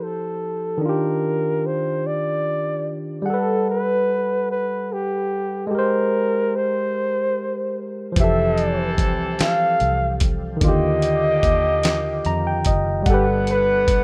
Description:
slow six-eight R&B; 49 BPM (dotted quarters); 6/8; straight; A4 = 440 Hz
breathy flugelhorn; melody; 0.0-14.0 s; G4 to F5; -25 LUFS; equal
barky tine electric piano; accompaniment; 0.0-14.0 s; D3 to Bb5; -25 LUFS; equal
percussive tonewheel organ; sustained chords; 8.2-14.0 s; F3 to F#5; -41 LUFS; equal
warm horn section; stabs; 8.2-14.0 s; D3 to F#5; -32 LUFS; equal
vintage muted fingered electric bass; bass; 8.2-14.0 s; F1 to F2; -28 LUFS; equal
dusty soul sampler-style drum kit; drums; 8.2-14.0 s; hi-hat, kick drum, snare drum; -23 LUFS; equal
little or no reverb; rough home demo mix; -21 LUFS; mono
0.0-14.0 A section
tine electric piano fill 11.8-13.1
0.0 Fmaj9; 0.8 Ebmaj9; 3.3 Gmaj9; 5.7 Abmaj9; 8.2 Fmaj9; 10.6 Ebmaj9; 13.1 Gmaj9

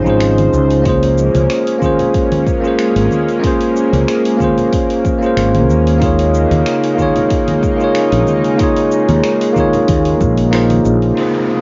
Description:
sunset chillout; 93 BPM; 4/4; swing 54% on 16ths; A4 = 439 Hz
bell-like tine electric piano; accompaniment; 0.0-11.6 s; Bb3 to Db5; -16 LUFS; equal; cassette tape, analog delay, plate reverb
lush unison pad; sustained chords; 0.0-11.6 s; C3 to C5; -23 LUFS; equal; chorus, cassette tape, plate reverb
mellow fretless electric bass; bass; 0.1-11.1 s; Ab1 to Eb2; -17 LUFS; equal
dusty soul sampler-style drum kit; drums; 0.1-11.6 s; cabasa, congas, finger snaps, hi-hat; -26 LUFS; equal; overdrive, low-pass filter on hats, small room reverb, cassette tape, low-pass filter on perc, low-pass filter on snare
electronic kick drum; drums; 0.9-10.3 s; -22 LUFS; equal; overdrive, small room reverb, cassette tape
congas; percussion; 1.3-10.3 s; -29 LUFS; equal
downlifter; sound effects; 11.2-11.6 s; -26 LUFS; equal
drifting glass-harmonics texture; texture; 11.5-11.6 s; Eb6; -37 LUFS; equal
moderate studio reverb, RT60 0.6 s; home recording on cassette, nothing above 7.5 kHz; -13 LUFS; mono
0.0-11.2 A section
band accent 10.5-10.9
0.0 Dbmaj9; 0.9 Bbm9; 6.0 Eb7sus4

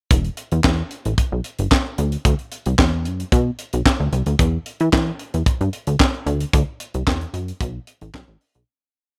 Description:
early-eighties boogie funk; 112 BPM; 4/4; straight; A4 = 440 Hz
plucky analog bass; bass; 0.1-8.6 s; E1 to E3; -23 LUFS; equal
tight funk drum kit; drums; 0.1-8.7 s; handclaps, hi-hat, kick drum, snare drum; -21 LUFS; equal
little or no reverb; -21 LUFS; mono
0.1-8.7 verse
fade-out 6.5-8.7

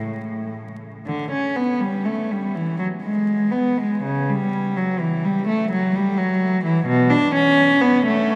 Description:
classical, baroque-style suite movement for unaccompanied cello; 55-66 BPM; 3/4; rubato; A4 = 440 Hz
rich cello; solo; 0.0-8.4 s; A2 to D4; -21 LUFS; equal
wet huge ambient reverb, RT60 7.8 s; in a vast, echoing space, vinyl crackle; -20 LUFS; mono
0.0-1.1 A section; 1.1-8.4 A section

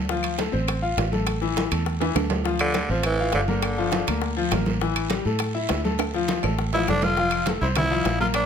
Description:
latin, salsa; 203 BPM; 4/4; straight; D minor; A4 = 437 Hz
bright baby grand piano; accompaniment; 0.0-8.4 s; E3 to C6; -26 LUFS; left 5 dB
fingered electric bass; bass; 0.0-8.5 s; F1 to A2; -27 LUFS; right 1 dB
bongos; percussion; 0.1-8.5 s; -33 LUFS; left 8 dB
congas; percussion; 0.1-8.5 s; -30 LUFS; right 1 dB
guiro; percussion; 0.1-8.5 s; -38 LUFS; right 6 dB
claves; percussion; 0.2-8.5 s; -36 LUFS; left 8 dB
timbales; percussion; 0.2-8.5 s; -31 LUFS; right 10 dB
raspy tenor saxophone; melody; 2.6-4.3, 6.7-8.5 s; D3 to F4; -24 LUFS; right 1 dB
light reverb; -21 LUFS; side -7 dB against mid
0.0-7.2 A section; 7.2-8.5 B section
drum fill 2.0-2.5, 6.0-7.2
0.1 Dm7; 1.3 A5; 2.5 Dm7; 3.6 Gm7; 4.8 A5; 6.0 Dm; 7.2 Fmaj7

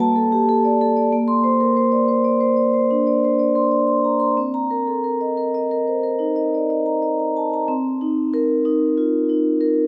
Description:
classical, contemporary piece for solo vibraphone; 92 BPM; 5/4; rubato; C dorian; A4 = 440 Hz
vibraphone with soft mallets; solo; 0.0-9.9 s; Bb3 to C6; -19 LUFS; equal
wet concert hall reverb, RT60 2.5 s; -19 LUFS; mono
0.0-7.7 A section; 7.7-9.9 A section
0.0 Bbmaj7; 1.1 Bbadd9; 4.4 Cm9; 7.7 Cm7

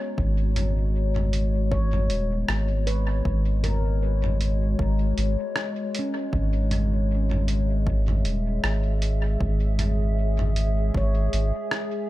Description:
ambient dub; 78 BPM; 4/4; swing 56% on 16ths; G# minor; A4 = 440 Hz
warbly tape-like pad; sustained chords; 0.0-12.1 s; G#3 to A#5; -30 LUFS; left 2 dB; chorus, built-in reverb
handpan; arpeggios; 0.0-12.1 s; C#4 to C#5; -36 LUFS; right 1 dB; low-pass filter, tape echo
soft dub sub bass; bass; 0.2-11.5 s; D#1 to G#1; -23 LUFS; equal
electronic kick drum; drums; 0.2-11.1 s; -28 LUFS; equal
lo-fi sampler-style drum kit; drums; 0.6-11.9 s; hi-hat, rim click, toms; -31 LUFS; equal; dub echo
little or no reverb; echo-heavy mix; -22 LUFS; side -16 dB against mid
0.0-12.1 A section
0.0 G#m11; 6.3 C#m

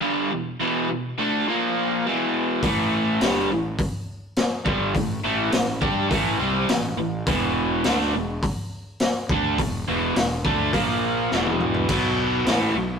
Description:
blues rock power trio and southern rock; 104 BPM; 4/4; straight; A4 = 440 Hz
crunchy overdriven guitar; riff; 0.0-13.0 s; E2 to G4; -22 LUFS; equal
fuzz fingered electric bass; bass; 2.6-13.0 s; E1 to G2; -30 LUFS; equal; overdrive
raw garage drum kit; drums; 2.6-12.6 s; crash cymbal, hi-hat, kick drum, snare drum, toms; -25 LUFS; left 1 dB
moderate stone room reverb, RT60 1.2 s; rough rehearsal-room recording, tube saturation; -20 LUFS; side -6 dB against mid
0.0-13.0 A section
drum fill 11.3-11.9
0.3 E5; 1.5 A#5; 2.1 E5; 2.6 A5; 7.3 E5; 10.7 A#5; 11.3 E5; 11.9 B5

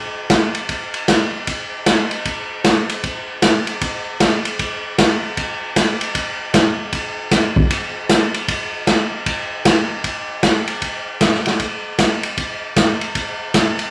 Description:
country; 154 BPM; 4/4; swing 64% on 8ths
swinging big-band drum kit; drums; 0.3-13.9 s; hi-hat, kick drum, ride cymbal, snare drum; -19 LUFS; equal
moderate large studio reverb, RT60 0.9 s; -19 LUFS; mono
0.0-10.0 A section; 10.0-13.9 B section

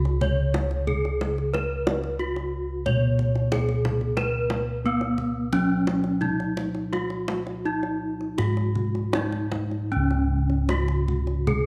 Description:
Javanese gamelan; 77-91 BPM; 4/4; straight; Db slendro; A4 = 439 Hz
gamelan-type bronze metallophone; melody; 0.0-11.7 s; Cb4-45c to Db5; -30 LUFS; equal
gamelan-type bossed gongs; bass; 0.0-11.7 s; Db2 to Cb5-45c; -28 LUFS; equal
kendang; percussion; 0.1-11.7 s; -33 LUFS; equal
light reverb; -25 LUFS; mono
0.0-9.9 A section; 9.9-11.7 B section

